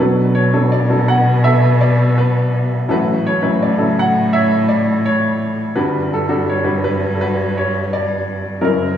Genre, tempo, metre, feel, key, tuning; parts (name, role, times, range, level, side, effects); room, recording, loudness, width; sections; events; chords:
acoustic folk-pop ballad; 83 BPM; 4/4; straight; B minor; A4 = 440 Hz
clear baby grand piano; melody; 0.0-9.0 s; F#1 to F#5; -16 LUFS; equal
warm cello; bass; 0.0-9.0 s; F#2 to B2; -17 LUFS; left 1 dB
moderate recital hall reverb, RT60 1.8 s; recorded in a church or concert hall, studio reverb; -14 LUFS; side -10 dB against mid
0.0-9.0 A section
0.0 Bm7; 2.9 A6; 5.8 Gmaj7